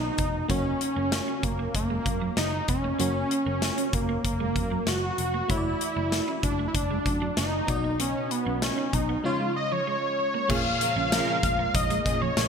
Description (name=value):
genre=1980s-style pop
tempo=96 BPM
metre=4/4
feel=straight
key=F# major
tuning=A4 = 435 Hz
part: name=wide unison lead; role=melody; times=0.0-12.5 s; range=A#3 to E#5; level=-27 LUFS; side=equal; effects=none
part: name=FM electric piano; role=accompaniment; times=0.0-12.5 s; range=A#2 to D#5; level=-35 LUFS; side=left 2 dB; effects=chorus
part: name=picked electric bass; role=bass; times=0.0-12.5 s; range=E#1 to A#2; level=-32 LUFS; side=equal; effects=none
part: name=big rock drum kit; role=drums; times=0.2-12.5 s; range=crash cymbal, hi-hat, kick drum, snare drum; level=-29 LUFS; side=left 1 dB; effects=gated reverb
part: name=clean electric guitar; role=riff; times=0.5-12.5 s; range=E#3 to D#4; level=-37 LUFS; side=right 9 dB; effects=analog chorus
part: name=chorused pulse-width pad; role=sustained chords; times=10.5-12.5 s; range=C#3 to E#4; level=-37 LUFS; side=equal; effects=none
part: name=analog synth brass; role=stabs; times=10.5-12.2 s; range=E#3 to A#4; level=-35 LUFS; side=right 1 dB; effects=chorus
room=moderate plate reverb, RT60 2.9 s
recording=bright 1980s-style digital production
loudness=-24 LUFS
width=side -6 dB against mid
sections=0.0-10.5 A section; 10.5-12.5 B section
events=none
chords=0.5 F#; 5.5 D/F#; 7.7 B; 9.2 C#; 10.5 A#m7